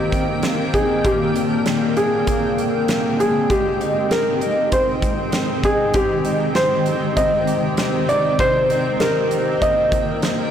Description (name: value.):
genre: dream pop.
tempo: 98 BPM.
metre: 4/4.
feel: straight.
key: unclear.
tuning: A4 = 437 Hz.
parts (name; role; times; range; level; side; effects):
felt-muted upright piano; melody; 0.0-10.5 s; G4 to Eb5; -20 LUFS; equal; tape echo.
granular cloud pad; sustained chords; 0.0-10.5 s; D3 to G5; -23 LUFS; right 1 dB; built-in reverb.
fingerpicked twelve-string acoustic guitar; arpeggios; 0.0-10.5 s; Bb2 to G4; -23 LUFS; left 2 dB; wide subtle chorus, tape echo.
huge arena drum kit; drums; 0.1-10.4 s; hi-hat, kick drum, snare drum; -25 LUFS; equal; none.
room: moderate huge ambient reverb, RT60 6.8 s.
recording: blown-out, overdriven recording, overdrive.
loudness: -16 LUFS.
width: side -9 dB against mid.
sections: 0.0-10.5 A section.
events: none.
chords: 0.0 Cm7; 1.0 Bb13; 3.5 Abmaj7; 8.4 Cm7.